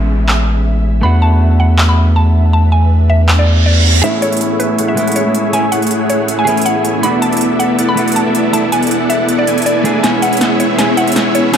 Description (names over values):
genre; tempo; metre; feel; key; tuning
future bass; 160 BPM; 4/4; swing 55% on 16ths, half-time; A major; A4 = 440 Hz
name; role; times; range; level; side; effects
clean electric guitar; accompaniment; 0.0-11.6 s; G#3 to G#4; -19 LUFS; right 2 dB; spring reverb
ethereal airy pad; sustained chords; 0.0-11.6 s; C#4 to E5; -24 LUFS; right 1 dB; ensemble chorus, built-in reverb, tremolo
saturated sub bass; bass; 0.0-11.6 s; A1 to E2; -14 LUFS; equal; high-pass filter
downlifter, reverse cymbal and riser; sound effects; 0.0-1.0, 3.4-11.6 s; none; -22 LUFS; right 2 dB; none
big-room dance drum kit; drums; 0.3-11.6 s; handclaps, hi-hat, snare drum; -18 LUFS; right 1 dB; overdrive
mallet-like synth pluck; melody; 1.0-11.6 s; B4 to B5; -18 LUFS; equal; chorus, cassette tape, dub echo
dense compressed supersaw; riff; 4.0-11.6 s; A3 to G#5; -14 LUFS; equal; low-pass filter
room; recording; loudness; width
moderate lush hall reverb, RT60 1.8 s, digital ambience; none; -10 LUFS; side -8 dB against mid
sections
0.0-4.0 A section; 4.0-11.6 B section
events
reverse cymbal 3.4-4.0; build-up 4.0-11.6; filter sweep on supersaw synth 4.0-11.6; drum fill 10.0-11.6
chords
0.0 Amaj7; 1.0 E7sus4; 4.0 Amaj7; 7.0 E7sus4; 10.0 C#m7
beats
0.28 0.66 | 1.03 1.41 1.78 2.16 | 2.54 2.91 3.29 3.66 | 4.04 4.41 4.79 5.16 | 5.54 5.91 6.29 6.66 | 7.04 7.41 7.79 8.16 | 8.54 8.91 9.29 9.66 | 10.04 10.41 10.79 11.16 | 11.54